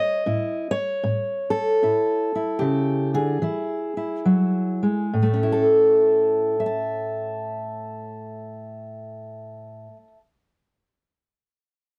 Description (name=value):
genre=acoustic country blues, solo or duo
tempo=68-79 BPM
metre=4/4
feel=swing 66% on 8ths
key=A major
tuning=A4 = 440 Hz
part: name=fingerpicked steel-string acoustic guitar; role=solo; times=0.0-10.2 s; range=A2 to A5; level=-23 LUFS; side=equal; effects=none
room=light reverb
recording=dry, close 1970s-style studio recording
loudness=-22 LUFS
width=mono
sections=0.0-5.1 A section; 5.1-8.7 B section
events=slowing down 0.0-5.1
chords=0.0 A; 3.4 E; 5.1 A